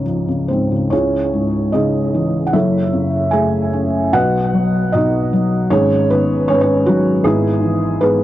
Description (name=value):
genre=classical, lyrical solo piano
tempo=66-79 BPM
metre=4/4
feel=rubato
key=C# minor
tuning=A4 = 440 Hz
part: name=felt-muted upright piano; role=solo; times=0.0-8.2 s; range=F#1 to G#5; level=-14 LUFS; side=equal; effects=analog delay
room=light reverb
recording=dry, gritty hardware recording, cassette tape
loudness=-14 LUFS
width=side -14 dB against mid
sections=0.9-8.2 A section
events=none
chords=0.0 Db; 0.9 C#madd9; 2.5 F#m7; 4.1 B; 5.7 G#sus4; 7.3 E/G#